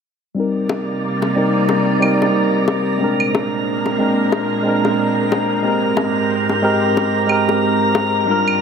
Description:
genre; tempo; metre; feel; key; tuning
sunset chillout; 91 BPM; 4/4; swing 58% on 16ths; C minor; A4 = 440 Hz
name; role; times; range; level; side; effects
bright tine electric piano; accompaniment; 0.3-8.6 s; G3 to Bb4; -17 LUFS; moving between left 4 dB and right 4 dB; auto-pan, low-pass filter, tape echo
soft string machine; sustained chords; 0.6-8.6 s; G2 to D5; -21 LUFS; right 1 dB; ensemble chorus
drifting glass-harmonics texture; texture; 0.9-8.6 s; Bb5; -23 LUFS; right 1 dB; chorus, built-in reverb
bongos; percussion; 0.7-8.1 s; none; -24 LUFS; left 4 dB; none
claves; drums; 2.0-3.3, 7.3-8.6 s; none; -22 LUFS; right 4 dB; none
room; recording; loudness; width
moderate plate reverb, RT60 1.7 s, digital ambience; none; -15 LUFS; side -6 dB against mid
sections
0.4-8.6 A section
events
filter sweep on tine electric piano 0.4-8.6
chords
0.4 Cm7; 3.0 Bb9; 5.6 Abmaj9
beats
| 0.37 1.03 1.69 2.35 | 3.01 3.67 4.33 4.99 | 5.65 6.31 6.97 7.63 | 8.29

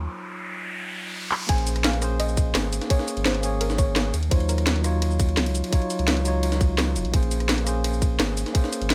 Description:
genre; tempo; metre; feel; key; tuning
liquid drum and bass; 170 BPM; 4/4; straight; Bb minor; A4 = 438 Hz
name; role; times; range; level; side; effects
tine electric piano; accompaniment; 0.0-8.9 s; Gb3 to Db5; -32 LUFS; equal; delay
warm sub bass; bass; 0.0-8.9 s; Eb1 to Eb2; -27 LUFS; equal; none
riser; sound effects; 0.0-1.5 s; none; -35 LUFS; equal; none
drum and bass drum kit; drums; 1.3-8.9 s; handclaps, hi-hat, rim click, shaker, snare drum; -28 LUFS; equal; low-pass filter on hats, low-pass filter on perc, low-pass filter on snare
soft round pluck; melody; 1.5-4.8 s; Bb4 to Ab5; -34 LUFS; equal; chorus, delay
electronic kick drum; drums; 1.5-8.6 s; none; -24 LUFS; equal; none
jungle sampler-style drum kit; drums; 1.5-8.9 s; ride cymbal, snare drum; -34 LUFS; equal; high-pass filter on cymbals, high-pass filter on snare, high-pass filter on room
room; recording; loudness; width
digital ambience; none; -24 LUFS; mono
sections
0.0-1.5 A section; 1.5-8.9 B section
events
riser 0.0-1.5; break 0.1-1.5; drum fill 1.3; drop 1.5-8.9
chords
0.0 Ebm9; 1.5 Bbm9; 4.1 Ebm9; 7.1 Bbm9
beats
| 0.08 0.43 0.79 1.14 | 1.49 1.84 2.20 2.55 | 2.90 3.25 3.61 3.96 | 4.31 4.67 5.02 5.37 | 5.73 6.08 6.43 6.79 | 7.14 7.49 7.84 8.20 | 8.55 8.90

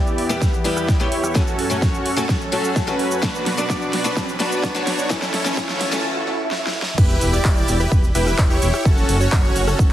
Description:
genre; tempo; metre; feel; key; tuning
EDM, festival progressive house; 128 BPM; 4/4; straight; unclear; A4 = 440 Hz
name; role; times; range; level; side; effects
lush unison pad; sustained chords; 0.0-7.0 s; E2 to B4; -29 LUFS; equal; chorus, sidechain pumping
supersaw chords; riff; 0.0-9.8 s; C#4 to D5; -22 LUFS; equal; sidechain pumping, low-pass filter, digital delay
riser, swell and sub drop; sound effects; 2.1-8.9 s; none; -30 LUFS; right 1 dB; none
big-room dance drum kit; drums; 0.1-9.9 s; crash cymbal, handclaps, hi-hat, rim click, shaker, snare drum; -26 LUFS; equal; none
picked steel-string acoustic guitar; accompaniment; 0.3-6.0 s; E3 to G4; -26 LUFS; left 3 dB; sidechain pumping, digital delay
electronic kick drum; drums; 0.4-9.9 s; none; -18 LUFS; equal; none
detuned saw bass; bass; 7.0-9.9 s; E1 to F#1; -21 LUFS; equal; sidechain pumping
room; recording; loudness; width
moderate digital room reverb, RT60 1.2 s; heavily compressed radio sound, multiband compression, high-pass filter; -17 LUFS; side -12 dB against mid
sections
0.0-7.0 A section; 7.0-9.9 B section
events
build-up 0.0-7.0; drum fill 0.0-6.0, 6.5-7.0; filter sweep on supersaw synth 0.0-7.0; filter sweep 0.0-7.0; swell 6.0-7.0; drop 7.0-9.9; impact 7.0-8.9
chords
0.0 Em; 1.4 F#m; 3.2 Bm; 5.1 A; 7.0 Em; 8.9 F#m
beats
0.42 0.89 | 1.35 1.82 2.29 2.76 | 3.23 3.70 4.17 4.63 | 5.10 5.57 6.04 6.51 | 6.98 7.45 7.92 8.38 | 8.85 9.32 9.79

